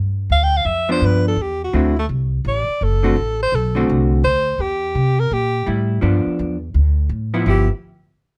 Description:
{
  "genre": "jazz, small-group swing and bop",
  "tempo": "168 BPM",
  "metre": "4/4",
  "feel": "swing 64% on 8ths",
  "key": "G mixolydian",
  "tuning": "A4 = 439 Hz",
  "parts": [
    { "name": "upright bass", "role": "bass", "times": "0.0-7.7 s", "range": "F#1 to C3", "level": "-21 LUFS", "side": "equal", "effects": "none" },
    { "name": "warm alto saxophone", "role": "melody", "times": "0.3-7.7 s", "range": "A3 to G5", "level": "-22 LUFS", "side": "equal", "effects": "none" },
    { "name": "vintage hollow-body jazz guitar", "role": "accompaniment", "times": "0.9-7.7 s", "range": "D3 to F#4", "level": "-22 LUFS", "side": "equal", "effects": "none" }
  ],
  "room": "little or no reverb",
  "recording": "close, detailed microphones",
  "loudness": "-18 LUFS",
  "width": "mono",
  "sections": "0.0-7.5 A section",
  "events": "none",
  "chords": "0.0 G7; 1.7 D7; 4.6 C7; 6.0 G7; 6.7 D5; 7.5 G6",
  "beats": "| 0.29 0.65 1.01 1.37 | 1.73 2.09 2.44 2.80 | 3.16 3.52 3.88 4.24 | 4.59 4.95 5.31 5.67 | 6.03 6.39 6.74 7.10 | 7.46"
}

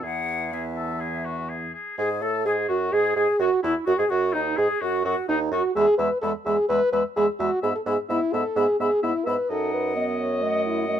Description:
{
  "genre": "quick classical-period movement for wind quintet",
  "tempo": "128 BPM",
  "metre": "4/4",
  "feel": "rubato",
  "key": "E major",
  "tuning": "A4 = 439 Hz",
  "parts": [
    { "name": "bright silver concert flute", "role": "melody", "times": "0.0-11.0 s", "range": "D#4 to B5", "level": "-32 LUFS", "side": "left 7 dB", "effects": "none" },
    { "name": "clear oboe", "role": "second line", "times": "0.0-11.0 s", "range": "D#4 to E5", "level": "-30 LUFS", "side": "left 3 dB", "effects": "none" },
    { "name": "mellow clarinet", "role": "accompaniment", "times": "0.0-11.0 s", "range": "G#3 to A4", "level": "-31 LUFS", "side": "right 7 dB", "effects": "none" },
    { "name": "warm French horn", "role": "accompaniment", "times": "0.0-11.0 s", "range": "E3 to D#5", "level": "-24 LUFS", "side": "equal", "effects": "none" },
    { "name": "warm bassoon", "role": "bass", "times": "0.0-11.0 s", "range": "D#2 to A2", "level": "-30 LUFS", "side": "right 4 dB", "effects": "none" }
  ],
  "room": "light reverb",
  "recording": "minimal, uncompressed stereo recording",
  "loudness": "-21 LUFS",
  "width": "side -9 dB against mid",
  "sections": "0.0-2.0 A section; 2.0-11.0 B section",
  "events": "none",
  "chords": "0.0 E; 3.9 D#madd11; 5.8 E; 7.6 E/G#; 9.5 D#dim/F#",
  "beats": "| 0.03 0.52 1.01 1.49 | 1.98 2.45 2.93 3.40 | 3.87 4.35 4.82 5.29 | 5.75 6.23 6.70 7.17 | 7.63 8.10 8.57 9.03 | 9.50 9.96 10.43 10.89"
}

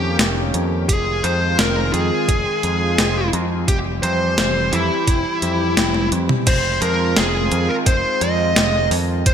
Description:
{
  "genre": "synthwave",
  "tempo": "86 BPM",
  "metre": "4/4",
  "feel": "straight",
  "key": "F minor",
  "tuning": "A4 = 440 Hz",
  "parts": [
    { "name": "bluesy overdriven lead guitar", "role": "melody", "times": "0.0-9.3 s", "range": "E4 to Eb5", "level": "-20 LUFS", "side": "equal", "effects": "distortion, ping-pong delay" },
    { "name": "chorused pulse-width pad", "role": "sustained chords", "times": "0.0-9.3 s", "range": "Db3 to G4", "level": "-24 LUFS", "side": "right 1 dB", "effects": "sidechain pumping" },
    { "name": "picked electric bass", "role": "bass", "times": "0.0-9.3 s", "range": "F1 to F2", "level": "-22 LUFS", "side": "equal", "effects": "sidechain pumping" },
    { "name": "clean 12-bit digital drum machine", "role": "drums", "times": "0.2-9.3 s", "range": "crash cymbal, hi-hat, snare drum, toms", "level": "-20 LUFS", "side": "equal", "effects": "gated reverb" },
    { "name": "electronic kick drum", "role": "drums", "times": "0.9-9.3 s", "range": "none", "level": "-18 LUFS", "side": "equal", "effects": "none" }
  ],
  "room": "moderate lush hall reverb, RT60 1.7 s",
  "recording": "bright 1980s-style digital production",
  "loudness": "-16 LUFS",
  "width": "side -8 dB against mid",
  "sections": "0.0-6.5 A section; 6.5-9.3 B section",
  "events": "drum fill 5.8-6.5",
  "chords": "0.0 Eb7/F; 0.9 Fm7; 3.7 C/F; 6.5 Fm7",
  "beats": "0.19 | 0.89 1.59 2.29 2.98 | 3.68 4.38 5.08 5.77 | 6.47 7.17 7.87 8.56 | 9.26"
}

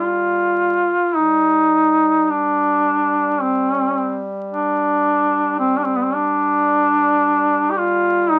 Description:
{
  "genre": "caucasian folk, Caucasian lament",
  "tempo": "55 BPM",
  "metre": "3/4",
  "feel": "rubato",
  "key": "unclear",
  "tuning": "A4 = 440 Hz",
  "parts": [
    { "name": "warm duduk", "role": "melody", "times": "0.0-8.4 s", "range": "B3 to G4", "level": "-18 LUFS", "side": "equal", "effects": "none" },
    { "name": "mellow duduk", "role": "drone", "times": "0.0-8.4 s", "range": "G3", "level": "-29 LUFS", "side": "equal", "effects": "none" }
  ],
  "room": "moderate small room ambience, RT60 0.5 s",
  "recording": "very old 78 rpm record, vinyl crackle",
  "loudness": "-18 LUFS",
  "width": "mono",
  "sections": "0.0-1.1 A section; 1.1-8.4 A section",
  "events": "none",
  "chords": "none",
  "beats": "| 1.13 2.27 3.39 | 4.50 5.59 6.67 | 7.75"
}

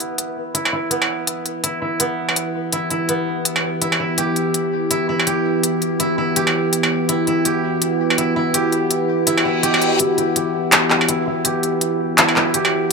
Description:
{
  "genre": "half-time drum and bass",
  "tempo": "165 BPM",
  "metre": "4/4",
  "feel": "swing 59% on 16ths, half-time",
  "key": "E minor",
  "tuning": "A4 = 440 Hz",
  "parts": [
    { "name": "deep dark ambient pad", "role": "sustained chords", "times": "1.4-12.9 s", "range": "E4 to G5", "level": "-21 LUFS", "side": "equal", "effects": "chorus, built-in reverb" },
    { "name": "koto", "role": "arpeggios", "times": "0.0-12.9 s", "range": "B3 to G4", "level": "-21 LUFS", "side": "right 2 dB", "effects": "low-pass filter, ping-pong delay" },
    { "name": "industrial drum kit", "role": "drums", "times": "0.0-12.7 s", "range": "handclaps, hi-hat, struck metal", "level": "-17 LUFS", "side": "equal", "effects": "overdrive" },
    { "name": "reverse cymbal", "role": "sound effects", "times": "9.4-10.0 s", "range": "none", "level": "-24 LUFS", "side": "left 6 dB", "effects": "none" }
  ],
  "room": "moderate huge ambient reverb, RT60 4.0 s",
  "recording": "none",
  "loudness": "-16 LUFS",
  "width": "side -4 dB against mid",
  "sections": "0.0-10.0 A section; 10.0-12.9 B section",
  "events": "filter sweep on ambient pad 0.0-10.0; reverse cymbal 9.4-10.0; build-up 10.0-12.9; filter sweep on koto 10.0-12.9",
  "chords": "0.0 Em",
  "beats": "0.18 0.54 0.91 | 1.27 1.63 2.00 2.36 | 2.73 3.09 3.45 3.82 | 4.18 4.54 4.91 5.27 | 5.63 6.00 6.36 6.72 | 7.09 7.45 7.82 8.18 | 8.54 8.91 9.27 9.63 | 10.00 10.36 10.72 11.09 | 11.45 11.82 12.18 12.54 | 12.91"
}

